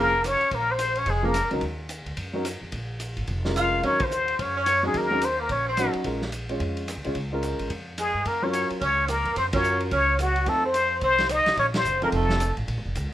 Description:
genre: jazz, small-group swing and bop.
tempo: 217 BPM.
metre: 4/4.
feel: swing 61% on 8ths.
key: Bb minor.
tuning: A4 = 440 Hz.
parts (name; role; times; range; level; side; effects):
trumpet with plunger mute; melody; 0.0-1.5, 3.6-5.9, 8.0-12.6 s; Gb4 to F5; -23 LUFS; left 2 dB; none.
clear tenor saxophone; second line; 0.0-1.5, 3.6-5.9, 8.0-12.6 s; Gb3 to F4; -30 LUFS; right 4 dB; none.
warm upright piano; accompaniment; 0.0-12.4 s; F3 to Db5; -28 LUFS; equal; none.
upright bass; bass; 0.0-13.1 s; F1 to G2; -30 LUFS; equal; none.
vintage drum kit; drums; 0.2-13.0 s; hi-hat, kick drum, ride cymbal, rim click, snare drum; -34 LUFS; equal; none.
room: light reverb.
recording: minimal, uncompressed stereo recording.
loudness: -22 LUFS.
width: side -13 dB against mid.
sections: 0.0-12.7 A section.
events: band accent 4.0, 9.5, 11.7.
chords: 0.0 Bbm7; 1.6 Ebm; 2.7 Bbm7; 3.8 Ebm7; 6.0 Bbm7; 8.3 Gbmaj7; 10.5 F7; 11.6 Bb5; 12.1 F7.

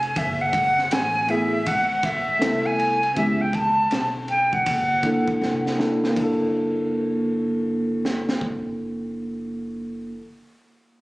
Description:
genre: hip hop, jazz-hop.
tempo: 80 BPM.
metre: 4/4.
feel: swing 64% on 16ths.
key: F# minor.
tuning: A4 = 444 Hz.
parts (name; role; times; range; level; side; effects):
breathy bright silver concert flute; melody; 0.0-5.7 s; E5 to A5; -21 LUFS; equal; low-pass filter, slapback echo.
upright bass; bass; 0.0-10.2 s; E#1 to C#2; -32 LUFS; equal; none.
crunchy breakbeat drum kit; drums; 0.0-8.6 s; hi-hat, kick drum, ride cymbal, snare drum; -29 LUFS; equal; none.
tine electric piano; accompaniment; 1.3-10.3 s; A3 to A4; -24 LUFS; equal; medium stereo tremolo, low-pass filter.
room: moderate echo chamber reverb, RT60 2.2 s.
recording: recorded on a phone in the room, club reverb, compression.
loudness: -20 LUFS.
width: side -20 dB against mid.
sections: 0.2-6.2 A section; 6.2-9.2 B section.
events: filter sweep 0.2-6.2; drum fill 5.4-6.2.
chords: 0.2 F#m11; 3.2 C#m7b5; 4.7 F#7alt.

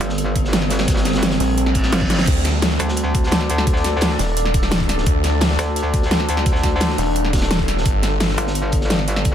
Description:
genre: dark technical drum and bass.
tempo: 172 BPM.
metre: 4/4.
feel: straight.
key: unclear.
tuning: A4 = 442 Hz.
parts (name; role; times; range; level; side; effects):
metallic inharmonic drone; sustained chords; 0.0-9.3 s; G3 to D5; -23 LUFS; equal; chorus, built-in reverb, sidechain pumping.
metallic wobble bass; bass; 0.0-9.3 s; G1 to D2; -21 LUFS; equal; chorus.
crunchy breakbeat drum kit; drums; 0.0-9.3 s; hi-hat, snare drum; -30 LUFS; equal; high-pass filter on hats, high-pass filter on snare, high-pass filter on room.
dubstep drum kit; drums; 0.0-9.3 s; crash cymbal, hi-hat, snare drum; -22 LUFS; equal; overdrive.
electronic kick drum; drums; 0.4-9.3 s; none; -20 LUFS; equal; overdrive.
snarling distorted saw bass; bass; 1.4-8.4 s; Eb1 to D2; -20 LUFS; equal; none.
reverse cymbal; sound effects; 1.7-2.3 s; none; -28 LUFS; right 1 dB; none.
room: little or no reverb.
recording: none.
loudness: -16 LUFS.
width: side -9 dB against mid.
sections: 0.0-9.3 A section.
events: reverse cymbal 1.7-2.3; drum fill 2.0.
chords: 0.0 Gm; 2.3 D5; 7.9 G5.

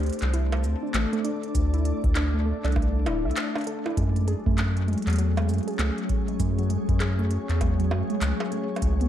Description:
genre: IDM.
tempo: 99 BPM.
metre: 4/4.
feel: swing 62% on 16ths.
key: unclear.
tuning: A4 = 440 Hz.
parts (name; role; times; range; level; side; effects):
glassy FM pad; sustained chords; 0.0-9.1 s; E3 to D5; -30 LUFS; left 2 dB; ensemble chorus, built-in reverb.
round analog bass; bass; 0.0-9.1 s; D1 to F#2; -24 LUFS; equal; none.
organic electronic drum kit; drums; 0.0-9.1 s; bongos, cowbell, handclaps, hi-hat, shaker; -34 LUFS; right 1 dB; ping-pong delay.
warbly dusty pluck; arpeggios; 0.3-9.1 s; F#3 to E5; -31 LUFS; right 1 dB; chorus, ping-pong delay.
electronic kick drum; drums; 1.5-9.0 s; none; -27 LUFS; equal; none.
room: moderate echo chamber reverb, RT60 1.4 s.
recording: dark, warm production.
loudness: -23 LUFS.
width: side -11 dB against mid.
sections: 0.0-9.1 A section.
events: none.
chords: 0.0 Dsus2; 4.0 F#madd9.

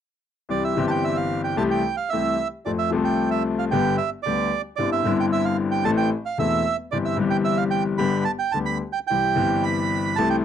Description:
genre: tango.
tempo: 112 BPM.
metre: 4/4.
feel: rubato.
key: C major.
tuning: A4 = 440 Hz.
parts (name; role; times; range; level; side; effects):
bandoneon; melody; 0.5-10.4 s; D5 to B5; -24 LUFS; right 8 dB; none.
bright concert grand piano; accompaniment; 0.5-10.4 s; E1 to A4; -22 LUFS; left 4 dB; none.
room: moderate small room ambience, RT60 0.5 s.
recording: dry, close 1970s-style studio recording.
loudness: -20 LUFS.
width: side -9 dB against mid.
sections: 0.5-10.4 A section.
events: none.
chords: 0.5 C; 1.6 Am7/C; 2.6 F; 3.7 G; 4.8 Cadd9/G; 5.9 Am; 6.9 C/G; 8.0 G; 9.1 C.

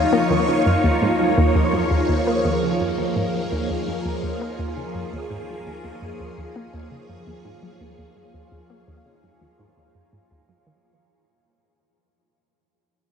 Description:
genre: ambient.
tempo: 84 BPM.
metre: 4/4.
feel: straight.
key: unclear.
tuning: A4 = 440 Hz.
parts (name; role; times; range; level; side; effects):
phased string machine; sustained chords; 0.0-10.8 s; F3 to Db5; -23 LUFS; equal; ensemble chorus, phaser.
analog pluck; riff; 0.0-10.7 s; Eb2 to Bb3; -23 LUFS; equal; chorus, analog delay.
analog drone; bass; 0.2-10.8 s; Eb2; -39 LUFS; equal; none.
bubbling stepped-filter texture; texture; 0.0-10.9 s; F4 to F5; -29 LUFS; right 1 dB; chorus, built-in reverb.
room: wet huge ambient reverb, RT60 8.3 s.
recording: dark, warm production.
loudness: -19 LUFS.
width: side -7 dB against mid.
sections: 0.0-10.8 A section.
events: fade-out 0.0-10.8; filter sweep on synth arpeggio sound 0.0-10.8.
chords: 0.0 Ebm7.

